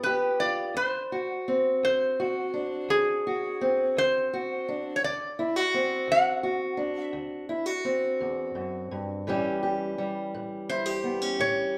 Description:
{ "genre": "acoustic country blues, solo or duo", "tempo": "56 BPM (dotted quarters)", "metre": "12/8", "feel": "straight", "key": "D mixolydian", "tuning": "A4 = 440 Hz", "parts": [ { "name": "metal-body resonator slide guitar", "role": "melody", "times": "0.0-11.8 s", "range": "G#4 to F#5", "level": "-29 LUFS", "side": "equal", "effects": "none" }, { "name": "fingerpicked steel-string acoustic guitar", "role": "accompaniment", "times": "0.0-11.8 s", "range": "D2 to G4", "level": "-30 LUFS", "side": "equal", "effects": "none" } ], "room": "wet large studio reverb, RT60 1.0 s", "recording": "band playing live in one room", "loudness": "-28 LUFS", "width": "mono", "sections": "0.0-11.8 A section", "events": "none", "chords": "0.0 G7; 0.7 D7; 9.3 A7", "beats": "| 0.75 1.81 2.88 3.94 | 5.01 6.08 7.14 8.21 | 9.27 10.34 11.41" }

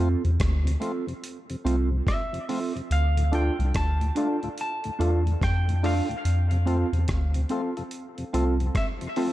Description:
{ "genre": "dub reggae", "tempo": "72 BPM", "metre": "4/4", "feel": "swing 63% on 16ths", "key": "D minor", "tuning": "A4 = 440 Hz", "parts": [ { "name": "mellow electric guitar", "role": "accompaniment", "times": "0.0-9.3 s", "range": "C4 to A4", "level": "-31 LUFS", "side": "right 4 dB", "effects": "wide subtle chorus, dub echo" }, { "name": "tonewheel organ", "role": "accompaniment", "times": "0.0-9.3 s", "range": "D2 to F4", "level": "-36 LUFS", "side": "left 2 dB", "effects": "overdrive" }, { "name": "soft dub sub bass", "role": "bass", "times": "0.0-8.7 s", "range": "C2 to F2", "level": "-23 LUFS", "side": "equal", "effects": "none" }, { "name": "dusty soul sampler-style drum kit", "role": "drums", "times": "0.2-9.3 s", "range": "hi-hat, kick drum, rim click", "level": "-30 LUFS", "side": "equal", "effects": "none" }, { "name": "clean electric guitar", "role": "melody", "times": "2.1-8.8 s", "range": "E5 to A5", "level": "-33 LUFS", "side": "right 1 dB", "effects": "dub echo" }, { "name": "percussive organ stab", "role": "stabs", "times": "3.3-9.3 s", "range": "C4 to A4", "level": "-33 LUFS", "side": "left 4 dB", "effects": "chorus, dub echo" } ], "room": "little or no reverb", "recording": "echo-heavy mix", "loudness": "-23 LUFS", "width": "side -15 dB against mid", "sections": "0.0-9.3 A section", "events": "break 0.0-2.9", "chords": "0.0 Dm", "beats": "0.39 1.23 2.06 | 2.90 3.73 4.57 5.41 | 6.24 7.08 7.91 8.75" }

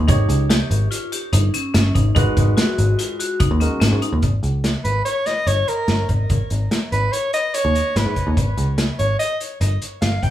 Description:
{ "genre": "progressive instrumental, band music in an uneven meter", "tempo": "145 BPM", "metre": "5/4", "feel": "straight", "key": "G# dorian", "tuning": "A4 = 438 Hz", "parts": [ { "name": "clear baby grand piano", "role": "accompaniment", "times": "0.0-4.2 s", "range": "G#3 to C#5", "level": "-28 LUFS", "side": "right 3 dB", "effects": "none" }, { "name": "vibraphone with hard mallets", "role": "arpeggios", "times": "0.0-4.2 s", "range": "C#4 to G4", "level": "-24 LUFS", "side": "left 3 dB", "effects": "none" }, { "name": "picked electric bass", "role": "bass", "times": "0.0-10.3 s", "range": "G1 to G#2", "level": "-18 LUFS", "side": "equal", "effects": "none" }, { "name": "vintage drum kit", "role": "drums", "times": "0.1-10.3 s", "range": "hi-hat, kick drum, snare drum", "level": "-22 LUFS", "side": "equal", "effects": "none" }, { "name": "breathy soprano saxophone", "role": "melody", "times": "4.8-10.3 s", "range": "Bb4 to G5", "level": "-22 LUFS", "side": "equal", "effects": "digital delay" } ], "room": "moderate studio reverb, RT60 0.5 s", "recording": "small room ambience", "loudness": "-17 LUFS", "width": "side -12 dB against mid", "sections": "0.0-4.2 A section; 4.2-10.3 B section", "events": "none", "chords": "0.1 D#7/G#; 2.2 G#m7; 4.2 G(b5, no3); 6.3 G#5; 8.4 C#5", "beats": "| 0.09 0.50 0.92 1.33 1.74 | 2.16 2.57 2.99 3.40 3.81 | 4.23 4.64 5.05 5.47 5.88 | 6.30 6.71 7.12 7.54 7.95 | 8.37 8.78 9.19 9.61 10.02" }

